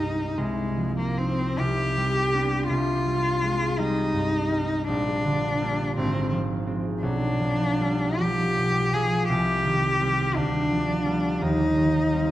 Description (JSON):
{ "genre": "classical, romantic duo for cello and harp", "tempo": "47-58 BPM (dotted quarters)", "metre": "6/8", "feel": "rubato", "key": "C minor", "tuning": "A4 = 440 Hz", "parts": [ { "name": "rich cello", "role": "melody", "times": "0.0-12.3 s", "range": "Ab3 to Ab4", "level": "-25 LUFS", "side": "left 1 dB", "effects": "none" }, { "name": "concert harp", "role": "accompaniment", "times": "0.0-12.3 s", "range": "Ab1 to Eb4", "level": "-25 LUFS", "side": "right 1 dB", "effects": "none" } ], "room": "moderate concert hall reverb, RT60 2.2 s", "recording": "none", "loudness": "-22 LUFS", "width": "side -14 dB against mid", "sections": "0.0-12.3 A section", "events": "none", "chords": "0.4 Fm7/C; 1.6 G/C; 2.7 Cm; 4.9 Gm/Bb; 6.0 Fm/Ab; 7.0 G7/B; 9.3 Cm; 10.4 G7/D; 11.4 Cm/Eb" }